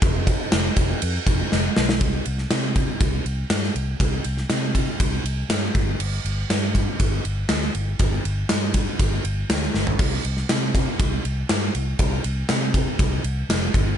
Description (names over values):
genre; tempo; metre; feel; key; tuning
hard rock; 120 BPM; 4/4; straight; unclear; A4 = 445 Hz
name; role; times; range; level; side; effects
fingered electric bass; bass; 0.0-13.9 s; F1 to C3; -25 LUFS; equal; none
gated 80s drum kit; drums; 0.0-13.9 s; crash cymbal, kick drum, ride cymbal, snare drum, toms; -21 LUFS; equal; none
room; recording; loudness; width
light reverb; nothing above 11.0 kHz; -20 LUFS; side -9 dB against mid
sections
0.0-2.0 A section; 2.0-14.0 B section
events
drum fill 1.5-2.0, 9.7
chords
none